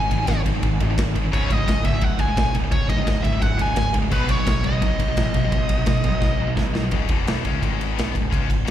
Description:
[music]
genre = heavy metal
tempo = 172 BPM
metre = 4/4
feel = straight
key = C# minor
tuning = A4 = 441 Hz
[part]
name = high-gain lead guitar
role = melody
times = 0.0-6.5 s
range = B4 to G#5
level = -27 LUFS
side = equal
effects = distortion, slapback echo, tape echo
[part]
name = high-gain distorted guitar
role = riff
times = 0.0-8.7 s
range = C#2 to C#4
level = -28 LUFS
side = left 11 dB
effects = distortion
[part]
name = scooped high-gain guitar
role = riff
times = 0.0-6.9 s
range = C#2 to B3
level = -28 LUFS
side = right 11 dB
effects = distortion, slapback echo
[part]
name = fuzz picked electric bass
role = bass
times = 0.0-8.7 s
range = C#1 to C#2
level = -25 LUFS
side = equal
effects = overdrive
[part]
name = big rock drum kit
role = drums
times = 0.1-8.7 s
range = crash cymbal, kick drum, ride cymbal, snare drum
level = -22 LUFS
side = equal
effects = none
[sound]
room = little or no reverb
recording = live gig heard through the venue's PA, recital hall reverb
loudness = -18 LUFS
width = side -11 dB against mid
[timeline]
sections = 0.0-6.9 A section; 6.9-8.7 B section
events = drum fill 6.2-6.9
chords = 0.0 G#5; 1.3 C#5; 4.1 B; 6.9 C#m; 7.6 G#5; 8.0 C#5

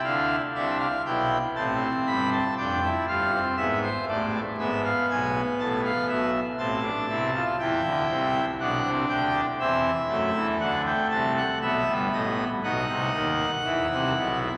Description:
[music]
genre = classical, baroque-style 3-part fugue for pipe organ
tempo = 60 BPM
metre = 4/4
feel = straight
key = A minor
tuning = A4 = 440 Hz
[part]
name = pipe organ, full organ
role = solo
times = 0.0-14.5 s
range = F1 to B5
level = -26 LUFS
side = equal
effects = none
[sound]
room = wet cathedral reverb, RT60 5.3 s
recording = vinyl crackle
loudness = -26 LUFS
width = mono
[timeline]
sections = 0.0-14.6 A section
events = none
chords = 0.0 Am (rootless); 1.6 Bm7b5; 3.6 E7/G#; 5.6 Am; 7.6 Em; 9.6 F#m7b5/E; 11.6 B7; 13.6 E5

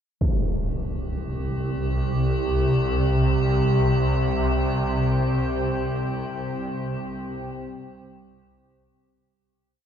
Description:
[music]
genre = dark ambient drone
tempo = free time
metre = none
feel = none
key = unclear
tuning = A4 = 440 Hz
[part]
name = dark analog pad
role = sustained chords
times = 1.9-9.3 s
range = G3 to G5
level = -32 LUFS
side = left 1 dB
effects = chorus
[part]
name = swarming drone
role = drone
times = 0.7-9.5 s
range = C2 to C3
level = -23 LUFS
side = equal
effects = built-in reverb, analog chorus
[part]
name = impact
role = percussion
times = 0.2-0.4 s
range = none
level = -27 LUFS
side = equal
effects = low-pass filter on sfx
[part]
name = metallic inharmonic drone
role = texture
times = 1.2-9.4 s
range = G4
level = -29 LUFS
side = left 1 dB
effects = chorus, built-in reverb
[sound]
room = moderate huge ambient reverb, RT60 8.5 s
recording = dreamy mix soaked in reverb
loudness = -22 LUFS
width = side -8 dB against mid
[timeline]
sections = 0.2-9.3 A section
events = fade-in on analog synth pad 0.2-9.3; fade-out 4.8-9.3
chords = 0.2 C5

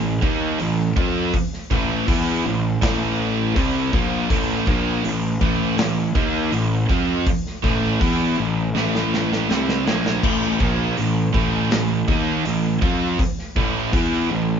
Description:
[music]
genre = quiet-loud alternative rock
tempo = 81 BPM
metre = 4/4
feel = straight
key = A minor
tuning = A4 = 444 Hz
[part]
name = scooped high-gain guitar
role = riff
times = 0.0-14.6 s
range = A2 to F4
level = -24 LUFS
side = right 7 dB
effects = distortion
[part]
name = sludgy distorted guitar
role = riff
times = 0.0-14.6 s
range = A2 to F4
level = -26 LUFS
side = left 6 dB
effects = overdrive
[part]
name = thick fuzz guitar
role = riff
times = 0.0-14.6 s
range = A2 to F4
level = -26 LUFS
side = right 2 dB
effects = distortion
[part]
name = fuzz picked electric bass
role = bass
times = 0.0-14.6 s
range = A1 to F2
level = -25 LUFS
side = equal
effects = overdrive
[part]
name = big rock drum kit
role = drums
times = 0.2-14.1 s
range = crash cymbal, hi-hat, kick drum, snare drum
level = -24 LUFS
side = equal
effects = none
[sound]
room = moderate small room ambience, RT60 0.5 s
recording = band playing live in one room, nothing above 7.5 kHz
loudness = -18 LUFS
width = side -7 dB against mid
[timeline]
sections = 0.0-14.6 A section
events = drum fill 8.8-10.2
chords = 0.0 Am

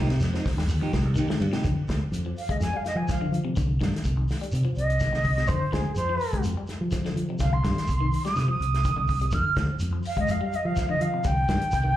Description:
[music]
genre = afrobeat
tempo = 125 BPM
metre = 4/4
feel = straight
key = F dorian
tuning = A4 = 439 Hz
[part]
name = electric guitar at the edge of break-up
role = arpeggios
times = 0.0-12.0 s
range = C3 to Ab3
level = -32 LUFS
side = left 4 dB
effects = phaser, slapback echo
[part]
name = electric guitar at the edge of break-up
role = stabs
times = 0.0-1.7 s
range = Bb3 to G4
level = -34 LUFS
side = right 5 dB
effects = slapback echo
[part]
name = fingered electric bass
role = bass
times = 0.0-11.9 s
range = C2 to F3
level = -26 LUFS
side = equal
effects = none
[part]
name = warm soul drum kit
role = drums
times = 0.1-11.8 s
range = hi-hat, kick drum, ride cymbal, snare drum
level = -30 LUFS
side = equal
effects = none
[part]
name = shekere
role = percussion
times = 0.2-11.8 s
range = none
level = -35 LUFS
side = right 1 dB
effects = none
[part]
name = concert flute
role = melody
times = 2.4-12.0 s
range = Ab4 to F6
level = -28 LUFS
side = right 1 dB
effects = slapback echo
[sound]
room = small room ambience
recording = live gig heard through the venue's PA, club reverb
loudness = -23 LUFS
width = side -13 dB against mid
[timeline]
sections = 0.0-1.6 A section; 1.6-12.0 B section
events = flute solo 1.6-12.0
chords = 0.0 Cm7; 1.6 F5; 3.6 Cmadd9; 5.5 F5; 7.4 Cmadd9; 9.3 F5; 11.2 Cmadd9

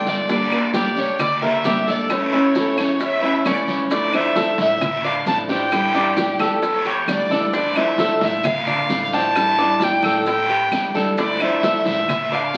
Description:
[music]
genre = latin, Cuban son and guajira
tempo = 132 BPM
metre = 4/4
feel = straight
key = D minor from 3.9 s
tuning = A4 = 440 Hz
[part]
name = warm violin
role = melody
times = 0.0-12.6 s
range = C#5 to A5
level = -23 LUFS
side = equal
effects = none
[part]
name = picked steel-string acoustic guitar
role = accompaniment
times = 0.0-12.6 s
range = D3 to G4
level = -26 LUFS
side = equal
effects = none
[part]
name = Cuban tres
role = arpeggios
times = 0.0-12.6 s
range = C#4 to D5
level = -26 LUFS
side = equal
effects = none
[part]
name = upright bass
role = bass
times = 0.0-12.6 s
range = G1 to A2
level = -40 LUFS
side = equal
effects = none
[part]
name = bongos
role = percussion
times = 0.1-12.6 s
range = none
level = -31 LUFS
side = equal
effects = none
[part]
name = congas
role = percussion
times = 0.1-12.6 s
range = none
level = -32 LUFS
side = equal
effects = none
[part]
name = guiro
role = percussion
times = 0.1-12.6 s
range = none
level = -30 LUFS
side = equal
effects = none
[part]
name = maracas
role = percussion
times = 0.1-12.6 s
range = none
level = -42 LUFS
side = equal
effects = none
[part]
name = claves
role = percussion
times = 0.5-12.3 s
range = none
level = -34 LUFS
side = equal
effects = none
[part]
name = rich studio violin section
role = second line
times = 2.6-7.4 s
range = G4 to E5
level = -27 LUFS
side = equal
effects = none
[sound]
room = wet studio reverb, RT60 0.8 s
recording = very old 78 rpm record, vinyl crackle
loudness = -19 LUFS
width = mono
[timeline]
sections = 0.0-3.9 A section; 3.9-12.6 B section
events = none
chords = 0.3 Gm; 2.1 A; 3.9 Dmadd9; 5.7 A7sus4; 7.5 Dmadd9; 9.4 A7sus4; 11.2 Dmadd9

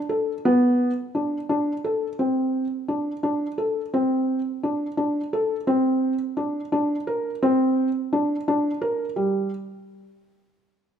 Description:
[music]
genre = contemporary instrumental, contemporary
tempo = 172 BPM (eighths)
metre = 5/8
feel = straight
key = unclear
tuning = A4 = 440 Hz
[part]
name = felt-muted upright piano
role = solo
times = 0.1-9.5 s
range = G3 to Bb4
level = -22 LUFS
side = equal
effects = none
[sound]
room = moderate recital hall reverb, RT60 1.6 s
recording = minimal, uncompressed stereo recording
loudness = -21 LUFS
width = side -8 dB against mid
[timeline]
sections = 0.0-2.2 A section; 2.2-9.2 B section; 9.2-10.9 C section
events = none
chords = none

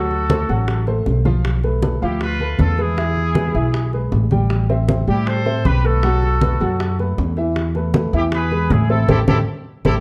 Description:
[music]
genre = latin, salsa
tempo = 157 BPM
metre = 4/4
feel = straight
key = A minor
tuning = A4 = 441 Hz
[part]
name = clear trumpet section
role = melody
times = 0.0-9.9 s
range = E4 to C5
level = -26 LUFS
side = equal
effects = none
[part]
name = clear upright piano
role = accompaniment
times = 0.0-10.0 s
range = E3 to G5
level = -25 LUFS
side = equal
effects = none
[part]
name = upright bass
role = bass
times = 0.0-10.0 s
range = A1 to A2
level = -21 LUFS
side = equal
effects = none
[part]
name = bongos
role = percussion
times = 0.1-9.9 s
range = none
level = -31 LUFS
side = equal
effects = none
[part]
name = congas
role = percussion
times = 0.1-9.9 s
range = none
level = -24 LUFS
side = equal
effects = none
[sound]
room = light reverb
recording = dark, warm production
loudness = -18 LUFS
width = mono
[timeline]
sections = 0.0-10.0 A section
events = drum fill 9.1-10.0; band accent 9.1-10.0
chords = 0.0 D7; 1.4 Bm7b5; 3.0 E; 4.5 Am7; 6.0 B5; 7.6 Esus4; 8.3 E; 9.1 Am7

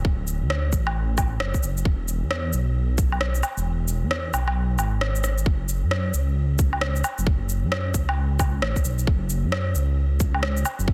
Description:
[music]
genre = future garage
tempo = 133 BPM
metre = 4/4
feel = swing 62% on 16ths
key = F# minor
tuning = A4 = 440 Hz
[part]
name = dark detuned saw bass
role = bass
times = 0.0-10.9 s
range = D1 to F#2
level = -26 LUFS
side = equal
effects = sidechain pumping
[part]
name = electronic kick drum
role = drums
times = 0.0-10.9 s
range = none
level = -25 LUFS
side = equal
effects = none
[part]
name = electronic shaker, rim click and woodblock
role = drums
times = 0.3-10.9 s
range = none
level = -30 LUFS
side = equal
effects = soft clipping on snare
[sound]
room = little or no reverb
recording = dense, heavily limited modern master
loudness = -24 LUFS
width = mono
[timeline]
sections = 0.0-10.9 A section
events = kick drops out 3.7-5.5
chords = none

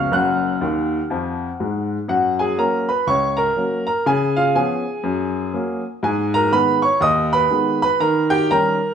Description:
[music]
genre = jazz, stride piano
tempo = 122 BPM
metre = 4/4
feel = swing 62% on 8ths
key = F# major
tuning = A4 = 440 Hz
[part]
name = clear upright piano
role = solo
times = 0.0-8.9 s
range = F#1 to F#6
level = -17 LUFS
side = equal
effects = none
[sound]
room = moderate large studio reverb, RT60 1.1 s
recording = band playing live in one room, nothing above 11.0 kHz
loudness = -17 LUFS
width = side -8 dB against mid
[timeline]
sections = 0.0-2.1 A section; 2.1-8.9 B section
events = upright piano fill 0.6-2.1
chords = 0.1 D#madd9/F#; 2.1 F#; 4.0 C#7; 5.0 F#; 6.0 G#m; 8.0 D#7

